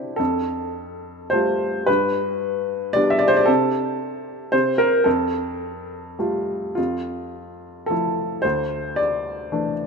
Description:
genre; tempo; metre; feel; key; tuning
classical, lyrical solo piano; 100-115 BPM; 3/4; rubato; F major; A4 = 443 Hz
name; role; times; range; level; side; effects
clear upright piano; solo; 0.0-9.9 s; D2 to E5; -20 LUFS; equal; none
room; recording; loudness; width
moderate plate reverb, RT60 2.5 s; none; -19 LUFS; side -4 dB against mid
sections
0.0-6.8 A section; 6.8-9.9 A section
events
none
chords
0.2 Fadd9; 1.9 G; 3.5 N.C.; 5.1 Fadd9; 6.8 Fmaj7; 8.4 Dsus2

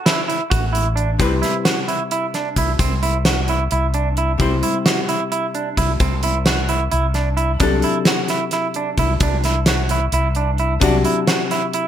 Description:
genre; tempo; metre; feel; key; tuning
progressive instrumental, band music in an uneven meter; 262 BPM (eighths); 7/8; straight; C lydian; A4 = 441 Hz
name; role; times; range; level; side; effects
archtop guitar, miked and amplified; accompaniment; 0.0-11.9 s; C3 to D5; -23 LUFS; left 5 dB; none
clean electric guitar; arpeggios; 0.1-11.9 s; C4 to F#4; -21 LUFS; right 4 dB; spring reverb
gated 80s drum kit; drums; 0.1-11.8 s; hi-hat, kick drum, snare drum; -20 LUFS; equal; none
fretless electric bass; bass; 0.5-11.0 s; A1 to C2; -20 LUFS; left 1 dB; none
room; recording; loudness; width
light reverb; none; -16 LUFS; side -10 dB against mid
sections
0.0-1.2 A section; 1.2-11.9 B section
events
none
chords
0.0 Dadd9; 1.2 Cmaj7; 7.6 D9/C

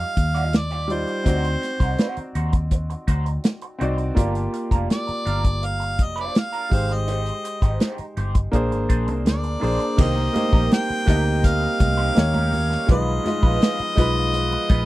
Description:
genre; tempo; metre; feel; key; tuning
lush 1970s-style soul; 82 BPM; 4/4; straight; unclear; A4 = 439 Hz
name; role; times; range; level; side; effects
warm harmonica; melody; 0.0-14.9 s; C5 to G5; -26 LUFS; equal; none
warm concert grand piano; accompaniment; 0.0-14.9 s; G3 to Eb5; -26 LUFS; equal; none
vintage muted fingered electric bass; bass; 0.0-14.9 s; F1 to Eb2; -24 LUFS; equal; none
warm soul drum kit; drums; 0.2-14.9 s; crash cymbal, hi-hat, kick drum, snare drum; -19 LUFS; equal; none
electric guitar through a small old amp; riff; 0.3-14.9 s; Db4 to Eb5; -31 LUFS; right 4 dB; wah
pipe organ, principal chorus; sustained chords; 10.0-14.9 s; F3 to G4; -33 LUFS; right 2 dB; none
congas; percussion; 10.0-14.9 s; none; -30 LUFS; right 3 dB; none
room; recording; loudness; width
little or no reverb; dry, close 1970s-style studio recording; -19 LUFS; side -17 dB against mid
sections
0.0-10.0 A section; 10.0-14.9 B section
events
none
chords
0.0 Ebmaj9; 1.3 D7b9; 4.2 Gm7; 6.7 Abmaj7; 8.5 Bb9; 10.0 Cm7; 12.2 Eb7; 12.9 Abm6

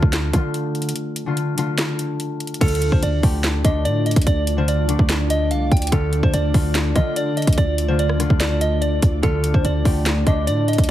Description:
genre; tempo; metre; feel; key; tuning
hip hop, trap; 145 BPM; 4/4; half-time; D phrygian; A4 = 440 Hz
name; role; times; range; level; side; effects
concert harp; accompaniment; 0.0-10.9 s; D3 to G4; -23 LUFS; left 2 dB; none
hard-hitting 808-style bass; bass; 0.0-10.9 s; C2 to D3; -21 LUFS; equal; none
trap drum kit; drums; 0.0-10.9 s; crash cymbal, handclaps, hi-hat, kick drum, rim click, snare drum; -20 LUFS; equal; none
delicate synth tine bell; melody; 2.6-10.9 s; A4 to G5; -25 LUFS; right 2 dB; chorus
ethereal airy pad; sustained chords; 3.2-10.9 s; A3 to D5; -29 LUFS; equal; ensemble chorus, built-in reverb
room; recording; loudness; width
little or no reverb; heavily compressed radio sound; -17 LUFS; side -13 dB against mid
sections
0.0-2.6 A section; 2.6-10.9 B section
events
break 1.0-2.6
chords
0.0 Dm

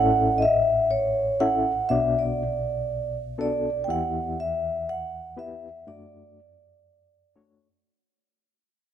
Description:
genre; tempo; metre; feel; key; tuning
soul; 121 BPM; 4/4; swing 60% on 8ths; D major; A4 = 440 Hz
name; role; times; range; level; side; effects
vibraphone with soft mallets; melody; 0.0-7.3 s; C#5 to G5; -24 LUFS; right 1 dB; none
reed electric piano; accompaniment; 0.0-7.8 s; A1 to F#5; -28 LUFS; left 3 dB; fast tremolo
room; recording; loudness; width
moderate plate reverb, RT60 2.6 s; dark, warm production; -22 LUFS; side -10 dB against mid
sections
0.0-7.9 A section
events
fade-out 0.0-7.9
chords
0.0 A; 1.9 Bm; 3.9 Em; 5.9 D/F#

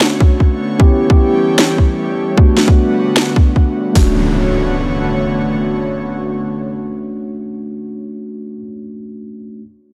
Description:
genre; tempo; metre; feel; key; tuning
future bass; 152 BPM; 4/4; swing 53% on 16ths, half-time; B minor; A4 = 438 Hz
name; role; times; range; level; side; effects
mellow tine electric piano; accompaniment; 0.0-9.6 s; A3 to G4; -20 LUFS; equal; sidechain pumping, dub echo
airy breathy pad; sustained chords; 0.0-7.9 s; D3 to C#5; -24 LUFS; equal; chorus, sidechain pumping
electronic snare drum; drums; 0.0-3.2 s; none; -17 LUFS; equal; overdrive
trap drum kit; drums; 0.2-4.1 s; hi-hat, kick drum; -12 LUFS; equal; overdrive
impact; sound effects; 4.0-8.6 s; none; -24 LUFS; equal; none
room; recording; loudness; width
light reverb; none; -14 LUFS; mono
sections
0.0-4.0 A section; 4.0-7.1 B section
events
none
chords
0.0 Bm9; 0.8 A7; 2.4 Gmaj9; 4.0 Bm9

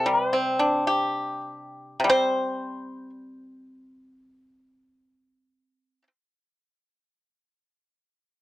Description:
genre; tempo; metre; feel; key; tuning
chinese traditional, Chinese solo plucked strings; 44-59 BPM; 2/4; rubato; unclear; A4 = 440 Hz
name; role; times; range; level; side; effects
pipa; solo; 0.0-6.1 s; C3 to C5; -22 LUFS; equal; none
room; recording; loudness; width
light reverb; dry, close 1970s-style studio recording; -22 LUFS; side -15 dB against mid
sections
0.0-2.1 A section; 2.1-7.3 B section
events
slowing down 0.0-2.1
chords
none

